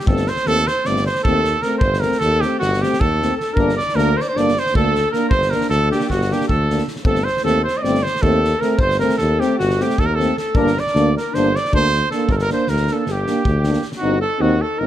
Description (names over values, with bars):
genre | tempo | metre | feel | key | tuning
balkan folk, Balkan brass band | 310 BPM (eighths) | 9/8 | straight | unclear | A4 = 439 Hz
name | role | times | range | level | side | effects
clear trumpet | melody | 0.0-14.9 s | F#4 to Eb5 | -21 LUFS | right 3 dB | none
clear alto saxophone | second line | 0.0-14.9 s | F#4 to Eb5 | -24 LUFS | left 3 dB | none
loose indie drum kit | percussion | 0.0-14.0 s | kick drum, snare drum | -24 LUFS | equal | none
warm euphonium | accompaniment | 0.1-14.9 s | A3 to C4 | -25 LUFS | right 7 dB | none
warm trombone | accompaniment | 0.1-14.9 s | C4 to Eb4 | -25 LUFS | left 6 dB | none
warm tuba | bass | 0.1-14.9 s | G1 to Eb2 | -21 LUFS | equal | none
room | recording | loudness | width
light reverb | none | -15 LUFS | side -12 dB against mid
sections
0.1-14.0 A section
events
none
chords
0.1 Adim/G; 3.6 Gm; 7.0 Adim/G; 10.5 Gm; 14.0 Am7b5/G